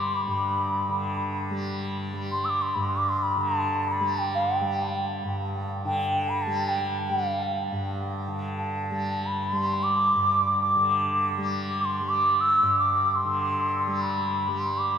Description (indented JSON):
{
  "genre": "indian classical, Hindustani",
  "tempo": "free time",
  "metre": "none",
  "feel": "none",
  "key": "G raga khamaj",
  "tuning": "A4 = 439 Hz",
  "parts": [
    { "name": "mellow bansuri", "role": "melody", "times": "0.0-15.0 s", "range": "G5 to E6", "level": "-24 LUFS", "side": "equal", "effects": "none" },
    { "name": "tanpura", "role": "drone", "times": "0.0-15.0 s", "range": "G2 to G3", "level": "-30 LUFS", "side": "equal", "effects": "none" }
  ],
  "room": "wet cathedral reverb, RT60 6.6 s",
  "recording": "in a vast, echoing space",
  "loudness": "-23 LUFS",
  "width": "side -8 dB against mid",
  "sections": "0.0-8.3 A section; 8.3-15.0 A section",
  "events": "none",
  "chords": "none",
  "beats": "free time"
}